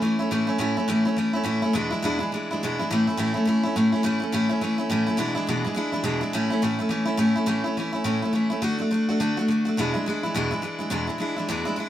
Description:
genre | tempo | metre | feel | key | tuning
rock | 210 BPM | 4/4 | swing 60% on 8ths | A major | A4 = 441 Hz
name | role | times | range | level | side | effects
picked steel-string acoustic guitar | solo | 0.0-11.9 s | E2 to F#4 | -22 LUFS | equal | none
room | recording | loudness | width
moderate studio reverb, RT60 0.8 s | band playing live in one room | -22 LUFS | side -12 dB against mid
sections
0.0-7.5 A section; 7.5-11.9 B section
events
none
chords
0.0 A; 1.8 E7; 2.9 A; 5.2 E7; 6.3 A; 8.6 D; 9.8 E7

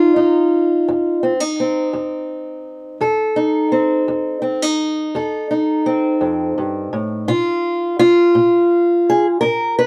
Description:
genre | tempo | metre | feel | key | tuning
acoustic country blues, solo or duo | 56 BPM (dotted quarters) | 12/8 | straight | F mixolydian | A4 = 435 Hz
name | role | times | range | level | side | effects
fingerpicked steel-string acoustic guitar | solo | 0.0-9.9 s | F2 to B4 | -17 LUFS | equal | none
room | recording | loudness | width
little or no reverb | dry, close 1970s-style studio recording | -17 LUFS | mono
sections
0.0-9.9 A section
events
none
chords
0.0 F7; 7.3 Bb5

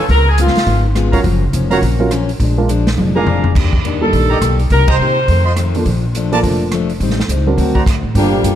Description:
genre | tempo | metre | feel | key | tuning
jazz, big band swing | 208 BPM | 4/4 | swing 61% on 8ths | Bb major | A4 = 440 Hz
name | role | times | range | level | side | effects
clear saxophone section | melody | 0.0-0.8, 4.0-5.5, 8.2-8.6 s | F3 to C5 | -17 LUFS | left 1 dB | none
clear trumpet section | stabs | 0.0-7.8 s | F4 to C6 | -22 LUFS | right 2 dB | none
picked plugged-in steel-string acoustic guitar | accompaniment | 0.1-8.6 s | F2 to Bb4 | -21 LUFS | left 6 dB | none
upright bass | bass | 0.1-8.6 s | F1 to C3 | -15 LUFS | equal | none
swinging big-band drum kit | drums | 0.1-8.5 s | crash cymbal, hi-hat, kick drum, ride cymbal, rim click, snare drum, toms | -19 LUFS | equal | none
dark grand piano | accompaniment | 1.1-7.8 s | F3 to Bb4 | -20 LUFS | right 3 dB | none
mellow trombone section | second line | 8.1-8.6 s | Bb2 to G3 | -16 LUFS | right 4 dB | none
room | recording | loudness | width
light reverb | dark, warm production | -12 LUFS | side -11 dB against mid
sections
0.0-8.2 A section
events
drum fill 3.0-3.5; band accent 4.8; stop 7.9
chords
0.1 Db7; 1.2 Gbmaj7; 2.4 Bb7; 3.5 Ebmaj7; 4.7 Cm7; 5.3 F7; 5.9 Bbmaj7; 7.0 Am7b5; 7.6 D7b13

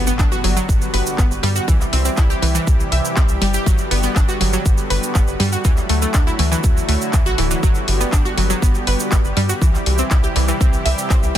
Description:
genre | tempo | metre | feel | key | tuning
progressive house | 121 BPM | 4/4 | straight | G major | A4 = 440 Hz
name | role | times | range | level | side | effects
lush unison pad | sustained chords | 0.0-11.4 s | C3 to G4 | -24 LUFS | equal | chorus, sidechain pumping
wide unison pluck | arpeggios | 0.0-11.4 s | E3 to E5 | -22 LUFS | equal | sidechain pumping, tape echo
tight sequencer bass | bass | 0.0-11.4 s | D1 to G2 | -21 LUFS | equal | sidechain pumping
impact | sound effects | 0.0-1.7 s | none | -31 LUFS | equal | none
cabasa | percussion | 0.1-11.3 s | none | -28 LUFS | right 6 dB | none
electronic kick drum | drums | 0.2-11.2 s | none | -16 LUFS | equal | none
house drum kit | drums | 0.2-11.4 s | handclaps, hi-hat | -26 LUFS | left 1 dB | none
room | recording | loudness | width
little or no reverb | dense, heavily limited modern master | -15 LUFS | side -11 dB against mid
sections
0.0-11.4 A section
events
impact 0.0-1.7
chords
0.0 Gmaj7; 1.7 C; 3.7 Gmaj7; 5.6 Dadd9; 7.6 Gmaj7; 9.6 C

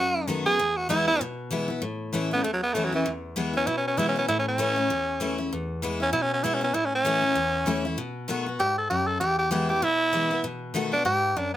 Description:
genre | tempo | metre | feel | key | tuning
rock | 195 BPM | 4/4 | swing 58% on 8ths | E major | A4 = 436 Hz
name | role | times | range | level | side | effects
raspy tenor saxophone | melody | 0.0-11.6 s | E3 to A4 | -23 LUFS | right 1 dB | none
picked steel-string acoustic guitar | accompaniment | 0.0-11.6 s | E2 to F#4 | -28 LUFS | left 2 dB | none
room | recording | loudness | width
light reverb | none | -23 LUFS | side -12 dB against mid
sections
0.0-1.8 A section; 1.8-11.6 B section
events
tenor saxophone solo 0.0-1.8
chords
0.0 B7; 0.6 E; 1.8 A; 3.1 E; 4.3 A; 5.5 E; 6.7 A; 8.0 B7; 9.2 E; 10.4 B7

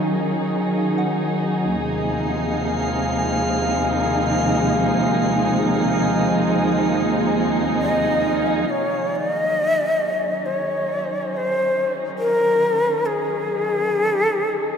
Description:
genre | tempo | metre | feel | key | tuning
ambient | free time | none | none | Eb dorian | A4 = 438 Hz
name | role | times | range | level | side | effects
muted chamber string section | sustained chords | 0.0-14.8 s | Eb2 to Ab4 | -20 LUFS | right 1 dB | none
soft synth bell | arpeggios | 0.0-1.9 s | Eb4 to Gb5 | -36 LUFS | equal | none
drifting glass-harmonics texture | texture | 2.2-8.7 s | F5 | -28 LUFS | left 2 dB | chorus, built-in reverb
breathy shakuhachi | melody | 7.8-14.8 s | Ab4 to Eb5 | -19 LUFS | left 1 dB | tape echo
room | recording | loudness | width
wet cathedral reverb, RT60 5.6 s | in a vast, echoing space | -18 LUFS | side -7 dB against mid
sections
0.0-8.7 A section; 8.7-14.8 B section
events
none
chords
0.0 Ebm11; 1.7 Fm/Eb; 8.7 Ebm7

